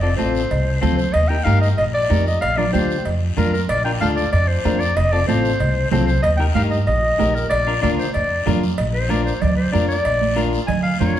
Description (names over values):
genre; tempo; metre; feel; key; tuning
latin, cumbia; 189 BPM; 4/4; straight; Bb major; A4 = 440 Hz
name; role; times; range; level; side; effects
warm clarinet; melody; 0.0-11.2 s; Bb4 to Ab5; -21 LUFS; left 1 dB; none
semi-hollow electric guitar; accompaniment; 0.0-11.2 s; C4 to Bb4; -25 LUFS; left 4 dB; none
upright bass; bass; 0.0-11.2 s; F1 to G2; -20 LUFS; equal; none
congas; percussion; 0.2-11.2 s; none; -24 LUFS; right 3 dB; none
guiro; percussion; 0.2-11.2 s; none; -35 LUFS; left 5 dB; none
cowbell and timbales; percussion; 0.5-10.8 s; none; -29 LUFS; right 4 dB; none
room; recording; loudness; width
wet large studio reverb, RT60 1.2 s; heard from further back in the room; -16 LUFS; side -11 dB against mid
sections
0.0-8.8 A section; 8.8-11.2 B section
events
clarinet solo 8.8-11.2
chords
0.0 F; 1.1 Eb; 2.4 Bb; 5.0 F; 6.2 Eb; 7.5 Bb